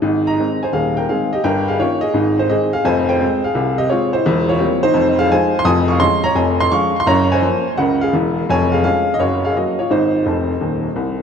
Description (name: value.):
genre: jazz, stride piano.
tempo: 170 BPM.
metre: 4/4.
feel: swing 66% on 8ths.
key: Ab major, Db major from 5.7 s.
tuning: A4 = 440 Hz.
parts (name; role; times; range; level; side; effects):
warm upright piano; solo; 0.0-11.2 s; Eb1 to Eb6; -14 LUFS; equal; ping-pong delay.
room: wet plate reverb, RT60 3.3 s.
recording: dreamy mix soaked in reverb.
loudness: -14 LUFS.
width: side -7 dB against mid.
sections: 0.0-11.2 A section.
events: upright piano fill 10.3-11.2.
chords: 0.0 Ab; 1.4 Eb7/G; 2.1 Ab; 2.9 Fm; 4.3 C7/E; 5.0 Fm7; 5.7 Db/F; 7.1 Gbmaj7; 8.5 Db/F; 9.2 Gb; 9.9 Ab.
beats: | 0.04 0.39 0.74 1.09 | 1.45 1.80 2.15 2.50 | 2.85 3.21 3.56 3.91 | 4.26 4.62 4.97 5.32 | 5.67 6.02 6.38 6.73 | 7.08 7.43 7.79 8.14 | 8.49 8.84 9.19 9.55 | 9.90 10.25 10.60 10.96.